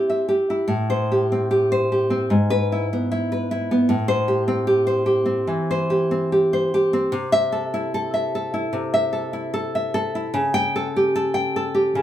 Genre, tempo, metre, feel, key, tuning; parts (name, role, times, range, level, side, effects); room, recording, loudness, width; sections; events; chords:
romantic piece for solo classical guitar; 75 BPM; 4/4; rubato; A minor from 7.1 s; A4 = 439 Hz
nylon-string guitar; solo; 0.0-12.0 s; G#2 to G5; -19 LUFS; equal
wet studio reverb, RT60 0.5 s; band playing live in one room; -19 LUFS; side -11 dB against mid
0.0-12.0 A section
0.0 C; 0.7 Am7; 2.3 E/G#; 3.9 Am7; 7.1 Am/C; 10.3 A7/C#